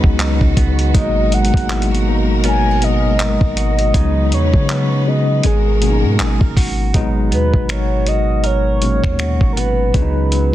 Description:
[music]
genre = contemporary R&B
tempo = 80 BPM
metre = 4/4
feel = swing 58% on 16ths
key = G# minor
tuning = A4 = 439 Hz
[part]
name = tine electric piano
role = accompaniment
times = 0.0-10.5 s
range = A#2 to D#4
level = -20 LUFS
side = left 2 dB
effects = fast stereo tremolo
[part]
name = warm studio string section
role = sustained chords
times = 0.0-6.9 s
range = B2 to B4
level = -26 LUFS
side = equal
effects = sidechain pumping
[part]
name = direct-recorded clean electric guitar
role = arpeggios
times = 0.0-10.5 s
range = C#3 to A#4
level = -26 LUFS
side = right 9 dB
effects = spring reverb, ping-pong delay
[part]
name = long sustained 808-style bass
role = bass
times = 0.0-10.5 s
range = G#1 to C#3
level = -17 LUFS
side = equal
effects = none
[part]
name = dusty soul sampler-style drum kit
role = drums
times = 0.0-10.5 s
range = finger snaps, handclaps, hi-hat, kick drum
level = -17 LUFS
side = equal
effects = vintage 12-bit sampler grit, soft clipping on snare
[part]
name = mellow horn-like synth lead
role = melody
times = 1.0-10.5 s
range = G#4 to G#5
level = -21 LUFS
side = equal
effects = chorus
[part]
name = glassy synth bell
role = texture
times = 2.4-4.0 s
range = C#5 to F#5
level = -34 LUFS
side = right 1 dB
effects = none
[sound]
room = little or no reverb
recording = dense, heavily limited modern master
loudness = -13 LUFS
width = side -13 dB against mid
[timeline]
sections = 0.0-6.9 A section; 6.9-10.5 B section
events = none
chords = 0.0 C#9sus4; 0.9 G#m9; 3.9 C#9sus4; 5.4 G#m9; 9.9 C#9sus4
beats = 0.19 | 0.94 1.69 2.44 3.19 | 3.94 4.69 5.44 6.19 | 6.94 7.69 8.44 9.19 | 9.94

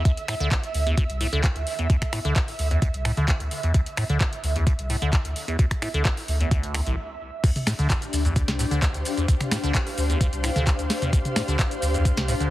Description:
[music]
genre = acid house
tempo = 130 BPM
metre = 4/4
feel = straight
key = D minor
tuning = A4 = 436 Hz
[part]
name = liquid acid bass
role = riff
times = 0.0-12.5 s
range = C2 to D3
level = -28 LUFS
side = equal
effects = phaser, tube saturation, analog delay
[part]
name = ethereal airy pad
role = texture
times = 0.0-12.5 s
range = D4 to F5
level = -31 LUFS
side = equal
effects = ensemble chorus, built-in reverb, sidechain pumping
[part]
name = warm sub bass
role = bass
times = 0.1-12.5 s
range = A1 to D2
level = -26 LUFS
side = equal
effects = sidechain pumping
[part]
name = booming analog drum machine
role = drums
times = 0.1-12.5 s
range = crash cymbal, finger snaps, handclaps, hi-hat, shaker, snare drum, toms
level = -28 LUFS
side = equal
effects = none
[part]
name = electronic kick drum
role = drums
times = 0.1-12.1 s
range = none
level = -22 LUFS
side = equal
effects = overdrive
[sound]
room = light reverb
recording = heavily compressed radio sound, multiband compression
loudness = -21 LUFS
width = side -15 dB against mid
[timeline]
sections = 0.0-7.4 A section; 7.4-12.5 B section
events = stop 7.0-7.4; drop 7.4-12.5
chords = 0.0 D5; 7.4 Dm7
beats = | 0.05 0.51 0.98 1.44 | 1.90 2.36 2.82 3.28 | 3.75 4.21 4.67 5.13 | 5.59 6.05 6.51 6.98 | 7.44 7.90 8.36 8.82 | 9.28 9.74 10.21 10.67 | 11.13 11.59 12.05

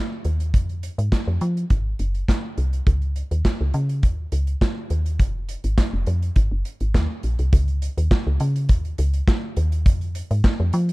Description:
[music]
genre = early-eighties boogie funk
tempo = 103 BPM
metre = 4/4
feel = straight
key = Db major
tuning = A4 = 439 Hz
[part]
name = modern studio drum kit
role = drums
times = 0.2-10.9 s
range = handclaps, hi-hat, kick drum, snare drum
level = -20 LUFS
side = equal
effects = none
[part]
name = woody FM bass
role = bass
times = 0.3-10.9 s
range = F1 to F3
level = -21 LUFS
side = equal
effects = none
[sound]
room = little or no reverb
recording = dark, warm production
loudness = -19 LUFS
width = side -21 dB against mid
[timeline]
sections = 0.0-7.5 A section; 7.5-10.9 B section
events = none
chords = none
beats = | 0.54 1.12 1.70 2.29 | 2.87 3.45 4.03 4.62 | 5.20 5.78 6.36 6.95 | 7.53 8.11 8.69 9.28 | 9.86 10.44

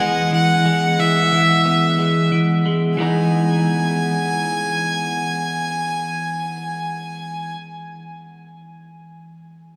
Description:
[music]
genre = rock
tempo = 60 BPM (dotted quarters)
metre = 6/8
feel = straight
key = E major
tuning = A4 = 440 Hz
[part]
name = clear violin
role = melody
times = 0.0-7.5 s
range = E5 to G#5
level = -23 LUFS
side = equal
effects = none
[part]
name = clean electric guitar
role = arpeggios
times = 0.0-7.6 s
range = E3 to D#4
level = -22 LUFS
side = equal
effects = none
[sound]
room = wet cathedral reverb, RT60 6.0 s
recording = recorded in a church or concert hall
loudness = -19 LUFS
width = mono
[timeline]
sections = 0.0-3.0 A section; 3.0-7.0 B section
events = none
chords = 0.0 E; 3.0 Emaj7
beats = | 0.99 1.99 | 2.99 3.99 | 4.98 5.98

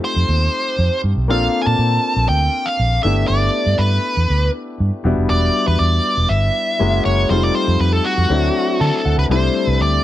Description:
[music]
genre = pop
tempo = 120 BPM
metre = 4/4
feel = straight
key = G major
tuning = A4 = 440 Hz
[part]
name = nasal lead guitar with a parked wah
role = melody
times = 0.0-10.0 s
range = F#4 to A5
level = -19 LUFS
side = equal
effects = overdrive, slapback echo
[part]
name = warm concert grand piano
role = accompaniment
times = 0.0-10.0 s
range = F#3 to A5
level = -21 LUFS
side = left 4 dB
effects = lush chorus
[part]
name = vintage muted fingered electric bass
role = bass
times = 0.2-10.0 s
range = E1 to D3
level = -17 LUFS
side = right 1 dB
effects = none
[sound]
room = small room ambience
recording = dry, close 1970s-style studio recording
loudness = -14 LUFS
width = side -13 dB against mid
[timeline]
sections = 0.0-9.3 A section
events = grand piano fill 8.6-9.3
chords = 0.0 F7; 1.3 Bbmaj7; 3.0 G69; 5.0 Em7; 6.8 F#9; 7.3 F7; 8.3 D7; 9.3 C69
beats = 0.29 0.79 | 1.29 1.79 2.30 2.80 | 3.30 3.80 4.30 4.80 | 5.30 5.80 6.30 6.80 | 7.30 7.80 8.30 8.80 | 9.30 9.80

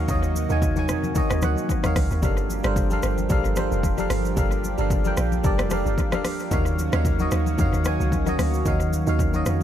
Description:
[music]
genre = amapiano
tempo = 112 BPM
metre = 4/4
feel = swing 55% on 16ths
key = unclear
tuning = A4 = 440 Hz
[part]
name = barking FM electric piano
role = accompaniment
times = 0.0-9.6 s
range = Eb3 to Ab5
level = -26 LUFS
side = equal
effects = chorus, dub echo
[part]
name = lush unison pad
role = sustained chords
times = 0.0-9.6 s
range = C3 to G4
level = -30 LUFS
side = equal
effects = chorus
[part]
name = deep log drum bass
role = bass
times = 0.0-9.6 s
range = F1 to F2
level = -24 LUFS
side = equal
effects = none
[part]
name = deep house drum kit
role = drums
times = 0.1-9.6 s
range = hi-hat, kick drum, rim click, shaker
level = -26 LUFS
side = equal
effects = overdrive, dub echo
[part]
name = congas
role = percussion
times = 0.1-9.6 s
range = none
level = -32 LUFS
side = left 4 dB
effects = none
[sound]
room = little or no reverb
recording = echo-heavy mix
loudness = -20 LUFS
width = side -10 dB against mid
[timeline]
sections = 0.0-9.6 A section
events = none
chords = 0.0 Ebm7; 2.2 Gm7; 6.5 Ebm7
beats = | 0.09 0.62 1.16 1.69 | 2.23 2.76 3.30 3.83 | 4.37 4.91 5.44 5.98 | 6.51 7.05 7.58 8.12 | 8.66 9.19

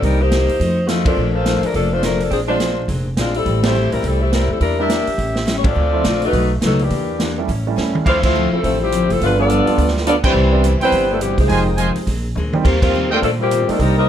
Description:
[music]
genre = jazz, big band swing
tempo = 209 BPM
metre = 4/4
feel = swing 61% on 8ths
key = D minor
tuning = A4 = 440 Hz
[part]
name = dark saxophone section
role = melody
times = 0.0-14.1 s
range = E3 to E5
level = -18 LUFS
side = left 2 dB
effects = none
[part]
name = picked steel-string acoustic guitar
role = accompaniment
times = 0.0-14.0 s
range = F2 to A4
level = -25 LUFS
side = left 3 dB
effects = none
[part]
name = warm concert grand piano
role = accompaniment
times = 0.0-14.1 s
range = F3 to G4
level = -24 LUFS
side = right 7 dB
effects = none
[part]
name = upright bass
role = bass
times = 0.0-14.1 s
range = F1 to Bb2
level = -20 LUFS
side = right 1 dB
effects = none
[part]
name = vintage drum kit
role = drums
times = 0.0-13.9 s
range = crash cymbal, hi-hat, kick drum, ride cymbal, snare drum, toms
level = -22 LUFS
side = right 1 dB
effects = none
[part]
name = clear trombone section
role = second line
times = 8.1-14.1 s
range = A2 to Eb4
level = -22 LUFS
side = right 4 dB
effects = none
[part]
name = clear trumpet section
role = stabs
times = 8.1-8.2, 10.2-13.2 s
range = E4 to Ab5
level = -21 LUFS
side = right 3 dB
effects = none
[sound]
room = moderate large studio reverb, RT60 0.9 s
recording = none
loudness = -14 LUFS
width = side -10 dB against mid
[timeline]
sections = 0.0-8.1 A section; 8.1-14.1 B section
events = band accent 1.0, 3.6, 5.6, 8.2, 10.2, 12.8; drum fill 7.8, 12.4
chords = 0.0 Cm7; 0.6 F7b9; 1.2 Bbmaj7; 2.3 Bb9; 3.5 Am7; 4.6 Em7b5; 5.2 A7; 5.8 Dm7; 6.3 B7; 6.9 Em7b5; 7.5 A7; 8.1 Dm9; 9.2 G9; 10.4 Cmaj7; 11.5 Fm7; 12.1 Bb9; 12.6 Eb69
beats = | 0.02 0.31 0.59 0.88 | 1.17 1.45 1.74 2.02 | 2.31 2.60 2.88 3.17 | 3.46 3.75 4.03 4.32 | 4.61 4.89 5.18 5.47 | 5.76 6.05 6.33 6.62 | 6.91 7.20 7.48 7.77 | 8.06 8.35 8.63 8.92 | 9.21 9.49 9.78 10.07 | 10.36 10.64 10.93 11.21 | 11.50 11.79 12.07 12.36 | 12.65 12.93 13.22 13.50 | 13.79 14.08

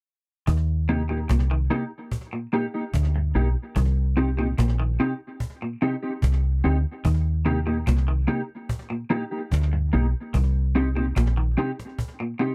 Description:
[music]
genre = roots reggae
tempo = 73 BPM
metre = 4/4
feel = straight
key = Eb major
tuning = A4 = 443 Hz
[part]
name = clean electric guitar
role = arpeggios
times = 0.5-12.5 s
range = G2 to Eb3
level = -33 LUFS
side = equal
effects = none
[part]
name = deep dub fingered electric bass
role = bass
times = 0.5-11.6 s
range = Bb1 to Eb2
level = -24 LUFS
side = equal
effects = none
[part]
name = cajon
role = drums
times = 0.5-12.5 s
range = none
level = -32 LUFS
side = equal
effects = slapback echo
[part]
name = mellow electric guitar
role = accompaniment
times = 0.9-12.5 s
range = Bb3 to G4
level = -28 LUFS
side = equal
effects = ensemble chorus, tape echo
[sound]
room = little or no reverb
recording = dry, close 1970s-style studio recording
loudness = -24 LUFS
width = mono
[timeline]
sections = 0.5-12.5 A section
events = none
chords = 0.5 Eb; 3.8 Cm; 7.0 Eb; 10.3 Cm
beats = | 0.47 1.29 2.11 2.93 | 3.76 4.58 5.40 6.22 | 7.05 7.87 8.69 9.52 | 10.34 11.16 11.98

